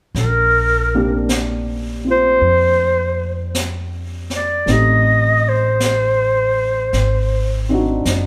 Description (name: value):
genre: jazz ballad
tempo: 53 BPM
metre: 4/4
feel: swing 69% on 8ths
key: Bb major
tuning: A4 = 440 Hz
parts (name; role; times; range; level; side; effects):
- upright bass; bass; 0.1-8.3 s; Gb1 to F2; -22 LUFS; equal; none
- breathy clarinet; melody; 0.2-7.7 s; Bb4 to Eb5; -18 LUFS; equal; none
- jazz brush drum kit; drums; 0.2-8.3 s; brushed snare drum, hi-hat, snare drum; -28 LUFS; equal; none
- dark baby grand piano; accompaniment; 0.9-8.3 s; A3 to G4; -24 LUFS; equal; none
room: moderate recital hall reverb, RT60 1.4 s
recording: recorded in a church or concert hall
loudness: -17 LUFS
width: mono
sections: 0.1-8.3 A section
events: none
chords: 0.1 Bb69; 4.7 Am7b5; 6.9 Ab7#11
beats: | 0.14 1.28 2.41 3.54 | 4.67 5.80 6.93 8.05